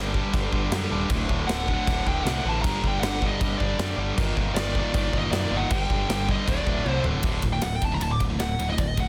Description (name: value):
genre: heavy metal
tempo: 156 BPM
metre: 4/4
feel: straight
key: unclear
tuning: A4 = 441 Hz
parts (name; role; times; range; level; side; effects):
- distorted electric guitar; riff; 0.0-7.2 s; D2 to G3; -35 LUFS; equal; distortion
- heavy high-gain guitar; riff; 0.0-9.1 s; D2 to G3; -34 LUFS; equal; distortion
- scooped high-gain guitar; riff; 0.0-9.1 s; D2 to G3; -34 LUFS; equal; distortion
- growling picked electric bass; bass; 0.0-9.1 s; D1 to F#2; -32 LUFS; equal; overdrive
- big rock drum kit; drums; 0.1-9.1 s; crash cymbal, kick drum, ride cymbal, snare drum, toms; -30 LUFS; equal; none
- high-gain lead guitar; melody; 1.5-9.1 s; D5 to D6; -32 LUFS; equal; distortion
room: little or no reverb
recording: dense, heavily limited modern master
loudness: -25 LUFS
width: mono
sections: 0.0-7.2 A section; 7.2-9.1 B section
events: drum fill 6.9-7.2; lead electric guitar solo 7.2-9.1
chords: 0.0 G5; 1.1 D; 2.6 G5; 4.2 Eb/G; 5.7 G5; 6.5 D5; 7.2 D